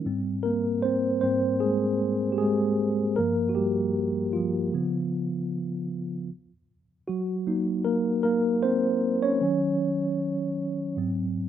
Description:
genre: R&B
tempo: 77 BPM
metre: 4/4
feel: swing 54% on 16ths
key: unclear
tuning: A4 = 440 Hz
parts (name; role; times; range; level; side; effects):
- mellow tine electric piano; solo; 0.0-11.5 s; G2 to Db5; -24 LUFS; equal; medium stereo tremolo
room: little or no reverb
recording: recorded outdoors, with no room sound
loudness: -24 LUFS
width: side -10 dB against mid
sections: 0.0-6.3 A section; 6.3-11.5 B section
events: tine electric piano solo 0.0-6.3, 6.3-11.5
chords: 0.0 Abmaj9; 3.2 Gm7; 4.7 Db7; 6.3 Gb6; 9.4 Ebm7; 11.0 Ab7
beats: | 0.05 0.83 1.61 2.39 | 3.17 3.94 4.72 5.50 | 6.28 7.06 7.84 8.62 | 9.40 10.18 10.96

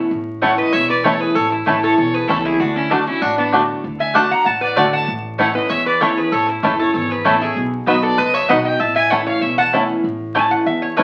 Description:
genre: bluegrass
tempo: 193 BPM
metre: 4/4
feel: straight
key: A major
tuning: A4 = 440 Hz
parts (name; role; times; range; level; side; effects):
- picked steel-string acoustic guitar; accompaniment; 0.0-11.0 s; E2 to F#4; -24 LUFS; equal; none
- upright bass; bass; 0.1-11.0 s; E1 to E2; -32 LUFS; equal; none
- clear fiddle; melody; 0.4-9.7 s; D4 to Bb5; -23 LUFS; equal; none
- lap resonator guitar; second line; 0.4-11.0 s; A3 to A5; -22 LUFS; equal; none
- bluegrass banjo; arpeggios; 0.4-11.0 s; A3 to F#4; -22 LUFS; equal; none
- mandolin; stabs; 0.4-11.0 s; A3 to B5; -23 LUFS; equal; none
room: wet studio reverb, RT60 0.7 s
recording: very old 78 rpm record, vinyl crackle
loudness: -17 LUFS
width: mono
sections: 0.1-10.0 A section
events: none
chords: 0.1 A; 2.6 D; 5.1 A; 7.6 B; 8.8 A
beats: | 0.11 0.42 0.73 1.04 | 1.35 1.67 1.98 2.29 | 2.60 2.91 3.22 3.53 | 3.84 4.15 4.46 4.77 | 5.08 5.39 5.70 6.01 | 6.32 6.63 6.94 7.25 | 7.56 7.87 8.18 8.49 | 8.80 9.11 9.42 9.73 | 10.04 10.35 10.66 10.97

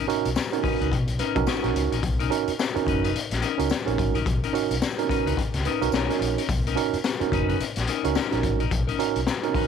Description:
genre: funk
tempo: 108 BPM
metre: 4/4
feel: swing 60% on 16ths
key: unclear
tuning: A4 = 440 Hz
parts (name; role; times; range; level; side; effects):
- clean electric guitar; accompaniment; 0.0-9.7 s; C#4 to B4; -31 LUFS; left 13 dB; none
- mellow tine electric piano; stabs; 0.1-9.7 s; C#4 to C#5; -27 LUFS; right 12 dB; medium stereo tremolo
- raw garage drum kit; drums; 0.1-9.7 s; hi-hat, kick drum, snare drum; -27 LUFS; left 4 dB; none
- overdriven fingered electric bass; bass; 0.3-9.6 s; F#1 to B2; -28 LUFS; left 1 dB; none
- tambourine; percussion; 0.4-9.4 s; none; -43 LUFS; left 12 dB; none
room: light reverb, studio ambience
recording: 1960s-style stereo with parts hard left and right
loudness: -22 LUFS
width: side -7 dB against mid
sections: 0.0-9.7 A section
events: tine electric piano fill 0.9-2.0, 5.4-6.5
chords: 0.0 Bmaj9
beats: 0.36 0.92 1.48 | 2.03 2.59 3.15 3.70 | 4.26 4.82 5.37 5.93 | 6.49 7.04 7.60 8.16 | 8.71 9.27

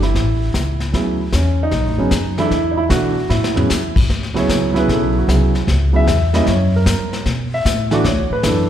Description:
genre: jazz piano trio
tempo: 152 BPM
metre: 4/4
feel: swing 67% on 8ths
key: D major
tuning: A4 = 440 Hz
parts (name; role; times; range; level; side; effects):
- warm concert grand piano; melody; 0.0-8.7 s; C#3 to E5; -18 LUFS; right 2 dB; none
- upright bass; bass; 0.0-8.7 s; F#1 to B2; -18 LUFS; equal; none
- vintage brush drum kit; drums; 0.0-8.7 s; brushed snare drum, crash cymbal, hi-hat, kick drum, snare drum, toms; -21 LUFS; left 2 dB; none
room: moderate scoring stage reverb, RT60 2.0 s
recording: recorded in a church or concert hall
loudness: -14 LUFS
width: side -10 dB against mid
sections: 0.0-4.1 A section; 4.1-8.7 B section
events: drum fill 3.3-3.7; grand piano solo 4.1-8.7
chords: 0.1 A; 0.9 Dmaj9; 1.7 B7; 2.5 E5; 3.3 A; 4.1 Dmaj9; 5.7 C#m; 6.5 F#; 7.3 Bm7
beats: 0.15 0.54 | 0.94 1.33 1.72 2.12 | 2.51 2.91 3.30 3.70 | 4.09 4.49 4.88 5.28 | 5.67 6.07 6.46 6.86 | 7.25 7.65 8.04 8.44

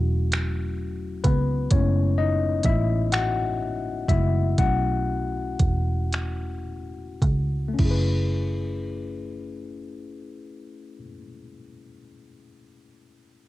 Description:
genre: slow six-eight R&B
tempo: 34-43 BPM (dotted quarters)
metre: 6/8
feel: straight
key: F# dorian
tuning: A4 = 442 Hz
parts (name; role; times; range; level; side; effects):
- tine electric piano; accompaniment; 0.0-13.5 s; F#3 to F#5; -29 LUFS; left 5 dB; cassette tape
- vintage muted fingered electric bass; bass; 0.0-11.1 s; E1 to C#2; -25 LUFS; right 1 dB; none
- smooth R&B drum kit; drums; 0.3-8.1 s; crash cymbal, finger snaps, hi-hat, kick drum; -24 LUFS; right 1 dB; vintage 12-bit sampler grit, cassette tape
room: little or no reverb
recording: home recording on cassette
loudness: -22 LUFS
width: side -16 dB against mid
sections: 0.0-7.8 A section; 7.8-11.3 B section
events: tine electric piano solo 0.0-7.8; slowing down 1.7-7.8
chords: 0.0 B9sus4; 1.7 F#m11; 4.6 B9sus4; 7.8 F#m11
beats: 0.31 | 1.71 3.12 | 4.58 6.12 | 7.79 9.54

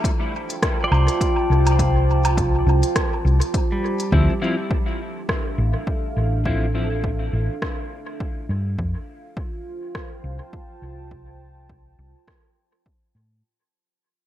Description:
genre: ambient dub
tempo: 103 BPM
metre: 4/4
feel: swing 56% on 16ths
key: unclear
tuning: A4 = 440 Hz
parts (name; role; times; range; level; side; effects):
- deep dark ambient pad; sustained chords; 0.0-13.4 s; D4 to A5; -27 LUFS; right 1 dB; chorus, built-in reverb
- electronic kick drum; drums; 0.0-13.0 s; none; -25 LUFS; equal; overdrive
- organic electronic drum kit; drums; 0.0-12.4 s; hi-hat, rim click, woodblock; -28 LUFS; equal; dub echo
- pedal steel guitar; arpeggios; 0.8-4.7 s; G3 to C6; -30 LUFS; right 1 dB; analog delay
- hollow-body short-scale fingered electric bass; bass; 0.9-13.4 s; A1 to A2; -19 LUFS; equal; none
- clean electric guitar; stabs; 4.1-6.9 s; F3 to E4; -30 LUFS; left 2 dB; analog chorus, dub echo
room: light reverb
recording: echo-heavy mix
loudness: -19 LUFS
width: side -12 dB against mid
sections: 0.0-4.1 A section; 4.1-13.4 B section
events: fade-out 4.1-13.4; filter sweep on fingered electric bass 4.1-13.4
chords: 0.0 Fmaj9; 4.1 Dm9; 8.8 Fmaj9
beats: 0.05 0.63 1.21 | 1.79 2.38 2.96 3.54 | 4.12 4.71 5.29 5.87 | 6.45 7.04 7.62 8.20 | 8.78 9.37 9.95 10.53 | 11.11 11.70 12.28 12.86

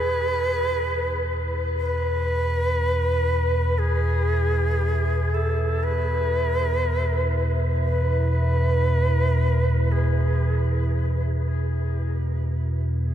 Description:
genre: dark ambient drone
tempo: free time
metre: none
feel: none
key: E major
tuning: A4 = 438 Hz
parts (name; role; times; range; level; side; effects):
- breathy bright shakuhachi; melody; 0.0-11.0 s; G#4 to B4; -25 LUFS; equal; ping-pong delay
- deep dark ambient pad; sustained chords; 0.7-13.1 s; E4 to E5; -36 LUFS; equal; chorus, built-in reverb
- deep rumbling drone; drone; 0.0-13.1 s; E2 to B2; -22 LUFS; equal; built-in reverb, phaser, wide subtle chorus
- bronze singing bowl; texture; 0.0-13.1 s; E4; -54 LUFS; right 5 dB; none
room: moderate huge ambient reverb, RT60 8.6 s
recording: dark, warm production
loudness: -20 LUFS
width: side -10 dB against mid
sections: 0.0-13.1 A section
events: fade-in on ambient pad 0.0-13.1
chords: 0.0 E5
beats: free time

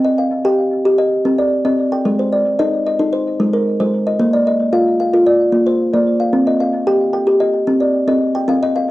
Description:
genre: world meditative, meditative tuned percussion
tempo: 112 BPM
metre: 4/4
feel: straight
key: C minor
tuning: A4 = 440 Hz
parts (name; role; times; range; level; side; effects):
- kalimba; solo; 0.0-8.9 s; Ab3 to G5; -13 LUFS; equal; cassette tape, analog delay
room: wet studio reverb, RT60 0.6 s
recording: home recording on cassette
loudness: -13 LUFS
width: side -17 dB against mid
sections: 0.0-8.9 A section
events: kalimba fill 8.5-8.9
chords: 0.0 Cm; 2.1 Ab; 4.2 Bb; 6.3 Cm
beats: 0.45 0.99 1.52 | 2.06 2.60 3.13 3.67 | 4.20 4.74 5.27 5.81 | 6.34 6.88 7.42 7.95 | 8.49

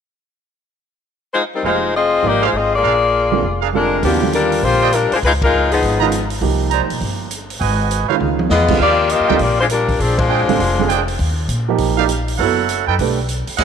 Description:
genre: jazz, big band swing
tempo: 201 BPM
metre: 4/4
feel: swing 63% on 8ths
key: Eb major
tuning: A4 = 441 Hz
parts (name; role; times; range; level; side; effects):
- warm saxophone section; melody; 1.3-6.3, 8.5-11.1 s; F3 to Eb5; -15 LUFS; left 4 dB; none
- warm grand piano; accompaniment; 1.6-13.2 s; Db3 to B4; -21 LUFS; right 10 dB; none
- clear trumpet section; stabs; 1.6-13.6 s; D4 to Bb5; -22 LUFS; right 11 dB; none
- upright bass; bass; 1.6-13.6 s; F1 to Bb2; -21 LUFS; equal; none
- vintage drum kit; drums; 4.0-13.6 s; crash cymbal, hi-hat, kick drum, ride cymbal, snare drum, toms; -24 LUFS; equal; none
room: light reverb, small room ambience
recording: 1960s-style stereo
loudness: -14 LUFS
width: side -7 dB against mid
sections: 0.4-1.6 A section; 1.6-4.0 B section; 4.0-13.6 C section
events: band accent 5.4, 10.2; drum fill 8.2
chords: 0.4 N.C.; 1.6 Fm7; 2.8 Bb7; 4.0 Ebmaj9; 5.2 Db13; 6.4 Cm9; 7.6 Abm7; 8.2 Db9; 8.8 Ebmaj9; 10.0 Bb13; 11.2 Ebadd9; 12.4 Gbm7; 13.0 Bm7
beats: | 0.43 0.73 1.03 1.33 | 1.63 1.93 2.23 2.53 | 2.83 3.13 3.43 3.73 | 4.03 4.33 4.63 4.92 | 5.22 5.52 5.82 6.12 | 6.42 6.72 7.01 7.31 | 7.61 7.91 8.21 8.51 | 8.81 9.10 9.40 9.70 | 10.00 10.30 10.60 10.90 | 11.20 11.49 11.79 12.09 | 12.39 12.69 12.99 13.29 | 13.59

